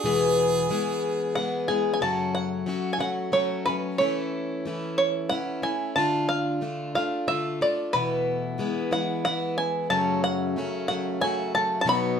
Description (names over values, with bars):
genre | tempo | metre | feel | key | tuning
acoustic folk duo or small band | 91 BPM | 3/4 | straight | unclear | A4 = 440 Hz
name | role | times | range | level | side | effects
bright harmonica | second line | 0.0-1.6 s | G#4 | -29 LUFS | right 3 dB | none
picked plugged-in steel-string acoustic guitar | accompaniment | 0.0-12.2 s | E2 to G#4 | -26 LUFS | left 3 dB | none
bluegrass banjo | melody | 1.4-12.2 s | B4 to B5 | -26 LUFS | right 2 dB | none
mellow accordion | sustained chords | 9.9-12.2 s | F#2 to D#4 | -34 LUFS | right 2 dB | none
room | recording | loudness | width
wet studio reverb, RT60 0.7 s | band playing live in one room | -23 LUFS | side -7 dB against mid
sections
0.0-2.0 A section; 2.0-12.2 B section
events
harmonica solo 0.0-2.0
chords
0.0 E; 2.0 F#m; 4.0 A/E; 6.0 Dm; 7.9 Esus4; 8.6 E; 9.9 F#m